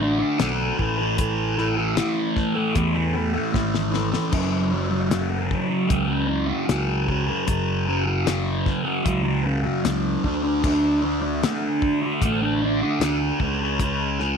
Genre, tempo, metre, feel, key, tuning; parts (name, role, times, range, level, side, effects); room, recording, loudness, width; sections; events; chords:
psychedelic rock; 76 BPM; 4/4; straight; F# minor; A4 = 440 Hz
thick fuzz guitar; riff; 0.0-14.4 s; F#2 to D4; -22 LUFS; equal; distortion, phaser
picked electric bass; bass; 0.0-14.4 s; F#1 to E2; -27 LUFS; equal
damped 70s drum kit; drums; 0.4-14.3 s; crash cymbal, hi-hat, kick drum, snare drum; -26 LUFS; left 3 dB
light reverb, small room ambience; 1960s-style stereo; -20 LUFS; side -6 dB against mid
0.0-14.4 A section
drum fill 3.5-4.3
0.0 D5; 0.8 A5; 4.3 F#5; 10.2 D5; 13.4 C#5